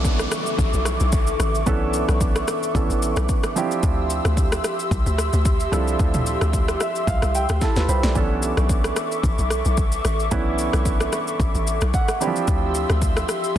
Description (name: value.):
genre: amapiano.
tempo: 111 BPM.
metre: 4/4.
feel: swing 55% on 16ths.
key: B minor.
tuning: A4 = 440 Hz.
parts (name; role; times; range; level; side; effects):
warm grand piano; accompaniment; 0.0-13.6 s; E3 to B5; -26 LUFS; right 4 dB; none.
airy breathy pad; sustained chords; 0.0-13.6 s; G4 to E6; -26 LUFS; left 1 dB; chorus, sidechain pumping.
hollow log drum bass; bass; 0.0-13.6 s; A1 to D2; -22 LUFS; equal; none.
deep house drum kit; drums; 0.0-13.6 s; kick drum, rim click, shaker, snare drum, toms; -23 LUFS; equal; overdrive.
downlifter; sound effects; 0.0-3.8 s; none; -32 LUFS; left 1 dB; none.
room: little or no reverb.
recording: dense, heavily limited modern master.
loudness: -19 LUFS.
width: side -11 dB against mid.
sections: 0.0-13.6 A section.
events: grand piano fill 6.5-8.2, 11.7-12.5; drum fill 7.6-8.2.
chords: 0.0 Bm11; 3.6 Dm11; 8.2 Bm11; 12.2 Dm11.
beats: 0.05 0.59 1.13 | 1.67 2.21 2.75 3.29 | 3.83 4.37 4.91 5.45 | 5.99 6.53 7.07 7.62 | 8.15 8.70 9.24 9.78 | 10.32 10.86 11.40 11.94 | 12.48 13.02 13.56.